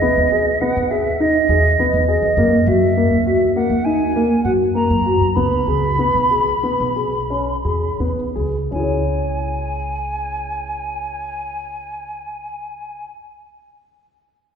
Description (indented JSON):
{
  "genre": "contemporary instrumental, chamber music in an uneven meter",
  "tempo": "82-102 BPM",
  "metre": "5/4",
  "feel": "straight",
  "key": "C# dorian",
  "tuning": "A4 = 442 Hz",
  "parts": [
    { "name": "mellow hollow silver concert flute", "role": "melody", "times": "0.0-13.1 s", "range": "D#5 to B5", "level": "-21 LUFS", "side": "right 2 dB", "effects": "none" },
    { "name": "dark grand piano", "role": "arpeggios", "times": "0.0-13.2 s", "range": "A#3 to C#5", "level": "-18 LUFS", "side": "left 1 dB", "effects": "none" },
    { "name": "upright bass", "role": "bass", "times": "0.0-13.1 s", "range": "B1 to F#2", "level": "-22 LUFS", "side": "equal", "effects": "none" }
  ],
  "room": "wet concert hall reverb, RT60 2.4 s",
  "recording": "heard from further back in the room",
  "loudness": "-16 LUFS",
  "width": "side -7 dB against mid",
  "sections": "0.0-8.7 A section; 8.7-12.3 B section",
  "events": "slowing down 3.6-8.7",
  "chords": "0.0 Emaj7; 2.4 F#6; 5.4 C#7(no3); 8.7 C#m",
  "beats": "0.02 0.61 1.20 1.78 | 2.37 2.96 3.56 4.15 4.75 | 5.36 5.99 6.63 7.30 8.00 | 8.72 9.45 10.17 10.89 11.61"
}